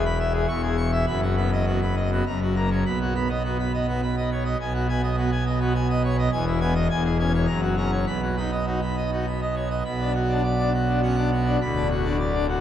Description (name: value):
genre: classical, organ toccata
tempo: 103 BPM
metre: 3/4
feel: straight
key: B major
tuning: A4 = 440 Hz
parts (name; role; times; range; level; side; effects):
- pipe organ, full organ; solo; 0.0-12.6 s; D1 to C#6; -21 LUFS; equal; none
room: wet cathedral reverb, RT60 4.3 s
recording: dark, warm production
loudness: -21 LUFS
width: side -10 dB against mid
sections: 0.0-9.9 A section; 9.9-12.6 B section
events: none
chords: 0.5 C#m/E; 1.1 B/F#; 2.3 F#; 2.9 B; 4.6 G#m7/B; 6.3 Emaj7; 6.9 C#m/E; 7.5 F#; 8.1 B; 9.9 Bm; 11.6 Bm/D